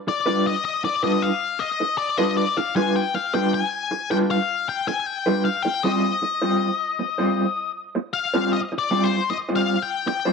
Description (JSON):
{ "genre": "rock", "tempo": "78 BPM", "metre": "4/4", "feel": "straight", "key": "G phrygian dominant", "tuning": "A4 = 440 Hz", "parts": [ { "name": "octave-fuzz lead guitar", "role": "melody", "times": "0.1-10.3 s", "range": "C5 to Ab5", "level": "-23 LUFS", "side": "left 7 dB", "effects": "distortion, slapback echo" }, { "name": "electric guitar through a small old amp", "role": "riff", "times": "0.1-10.3 s", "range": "G3 to C5", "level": "-22 LUFS", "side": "right 1 dB", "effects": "tremolo" } ], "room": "moderate spring reverb, RT60 1.7 s, digital ambience", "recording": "none", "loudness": "-20 LUFS", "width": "side -5 dB against mid", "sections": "0.0-10.3 A section", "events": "lead electric guitar solo 0.0-10.3", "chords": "0.0 G7; 5.5 Fsus2/G" }